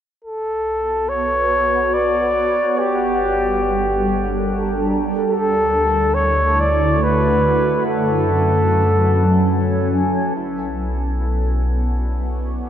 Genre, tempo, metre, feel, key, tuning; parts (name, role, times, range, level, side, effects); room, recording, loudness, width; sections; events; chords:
ambient; free time; B minor; A4 = 440 Hz
mellow flugelhorn; melody; 0.2-9.9 s; G4 to D5; -19 LUFS; equal; diffuse ambient delay
shimmering ambient pad; sustained chords; 1.1-12.7 s; D3 to G#5; -21 LUFS; equal; chorus, built-in reverb, phaser
round analog bass; bass; 0.2-12.7 s; G1 to F#2; -22 LUFS; equal
felt-muted upright piano; arpeggios; 10.4-12.7 s; E4; -38 LUFS; left 1 dB; diffuse ambient delay
bowed-like drone; drone; 11.0-12.7 s; B3; -35 LUFS; left 1 dB; built-in reverb
wet huge ambient reverb, RT60 7.6 s; -16 LUFS; side -9 dB against mid
0.2-10.4 A section; 10.4-12.7 B section
fade-in on analog synth bass 0.2-10.4; fade-in on felt piano 10.4-12.7
0.2 Bm7; 2.8 Gm; 5.3 D; 7.8 F#m; 10.4 Bm7